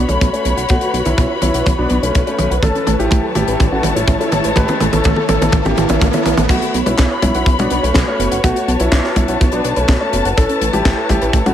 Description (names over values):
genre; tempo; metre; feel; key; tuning
italo disco; 124 BPM; 4/4; straight; unclear; A4 = 443 Hz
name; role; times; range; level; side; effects
dark symphonic string section; sustained chords; 0.0-11.5 s; E4 to B5; -20 LUFS; left 2 dB; none
soft round pluck; arpeggios; 0.0-11.5 s; A3 to F#5; -23 LUFS; right 3 dB; chorus, ping-pong delay
chorused synth bass; bass; 0.0-11.5 s; F#1 to B1; -20 LUFS; equal; none
riser; sound effects; 0.9-6.5 s; none; -25 LUFS; equal; none
warm grand piano; melody; 0.1-11.5 s; A3 to B4; -20 LUFS; equal; low-pass filter, ping-pong delay
tight funk drum kit; drums; 0.1-11.5 s; crash cymbal, handclaps, hi-hat, snare drum, toms; -20 LUFS; left 1 dB; none
kick drum; drums; 0.2-11.4 s; none; -15 LUFS; equal; none
room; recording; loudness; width
light reverb; none; -13 LUFS; side -10 dB against mid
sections
0.0-6.5 A section; 6.5-11.5 B section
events
drum fill 0.0-6.5; filter sweep on synth arpeggio sound 0.0-6.5; filter sweep on grand piano 0.0-6.5; riser 0.9-6.5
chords
0.0 Bsus2; 2.6 Aadd9; 6.5 Bsus2; 10.4 Aadd9